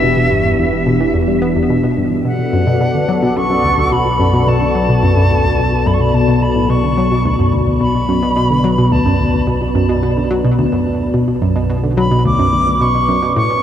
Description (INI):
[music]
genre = ambient, sequencer-driven space music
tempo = 108 BPM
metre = 4/4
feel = straight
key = unclear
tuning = A4 = 440 Hz
[part]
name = silver concert flute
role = melody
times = 0.0-13.6 s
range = E5 to D6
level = -19 LUFS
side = equal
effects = tape echo
[part]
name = sweeping resonant pad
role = sustained chords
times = 0.0-13.6 s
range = E3 to D5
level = -17 LUFS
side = left 1 dB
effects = chorus
[part]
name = analog pluck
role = riff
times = 0.0-13.6 s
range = D2 to C#4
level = -15 LUFS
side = equal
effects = chorus, tape echo
[part]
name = fat analog bass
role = bass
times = 0.0-13.6 s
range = E1 to B1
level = -22 LUFS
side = equal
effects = none
[sound]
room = wet huge ambient reverb, RT60 8.5 s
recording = in a vast, echoing space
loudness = -12 LUFS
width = side -10 dB against mid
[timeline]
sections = 0.0-13.6 A section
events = fade-in on analog synth bass 0.0-13.6; filter sweep on synth arpeggio sound 0.0-13.6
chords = 0.0 Em7; 2.3 Bm7